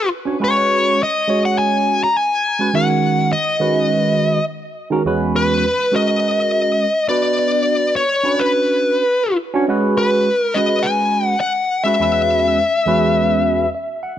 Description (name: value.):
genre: jazz.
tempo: 103 BPM.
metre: 4/4.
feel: straight.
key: E lydian.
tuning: A4 = 440 Hz.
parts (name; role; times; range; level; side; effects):
smooth overdriven lead guitar; melody; 0.0-13.7 s; B4 to A#5; -16 LUFS; left 2 dB; tape echo.
barky tine electric piano; accompaniment; 0.3-14.2 s; E2 to F#5; -18 LUFS; right 3 dB; phaser.
room: light reverb.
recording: none.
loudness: -14 LUFS.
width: side -10 dB against mid.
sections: 0.0-14.2 A section.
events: tine electric piano fill 13.5-14.2.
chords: 0.4 C#7sus4; 2.7 Bmaj9/D#; 5.1 Eadd9; 5.9 F#; 7.1 Bmadd9; 9.7 C#7sus4; 12.0 Eadd9.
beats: | 0.41 0.99 1.57 2.15 | 2.73 3.31 3.90 4.48 | 5.06 5.64 6.22 6.80 | 7.38 7.96 8.54 9.12 | 9.70 10.28 10.85 11.43 | 12.01 12.59 13.17 13.75.